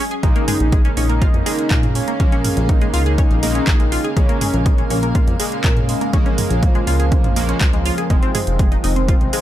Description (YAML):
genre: melodic techno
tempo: 122 BPM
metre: 4/4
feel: straight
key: Bb minor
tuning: A4 = 440 Hz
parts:
  - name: fat analog lead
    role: melody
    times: 0.0-9.4 s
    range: F3 to Ab4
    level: -24 LUFS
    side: left 1 dB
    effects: lush chorus, sidechain pumping, tape echo
  - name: evolving wavetable pad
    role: sustained chords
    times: 0.0-9.4 s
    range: Gb3 to F5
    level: -28 LUFS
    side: equal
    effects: chorus, built-in reverb, phaser, sidechain pumping
  - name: tight sequenced synth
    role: arpeggios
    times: 0.0-9.4 s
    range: Ab3 to Ab5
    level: -26 LUFS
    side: left 1 dB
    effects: chorus, sidechain pumping, ping-pong delay
  - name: punchy analog drum machine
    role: drums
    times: 0.1-9.4 s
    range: handclaps, hi-hat, toms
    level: -24 LUFS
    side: right 1 dB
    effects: none
  - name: sync-sweep polysynth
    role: stabs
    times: 0.2-9.4 s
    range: Db3 to Bb3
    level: -26 LUFS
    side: right 3 dB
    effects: chorus, sidechain pumping, ping-pong delay
  - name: plucky analog bass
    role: bass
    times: 0.2-9.3 s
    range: F1 to Bb2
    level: -20 LUFS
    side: equal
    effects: sidechain pumping
  - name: electronic kick drum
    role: drums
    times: 0.2-9.2 s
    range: none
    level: -16 LUFS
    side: equal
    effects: none
room: digital ambience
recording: none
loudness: -14 LUFS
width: side -12 dB against mid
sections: 0.0-9.4 A section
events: none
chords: 0.2 Bbm7; 8.1 Fm7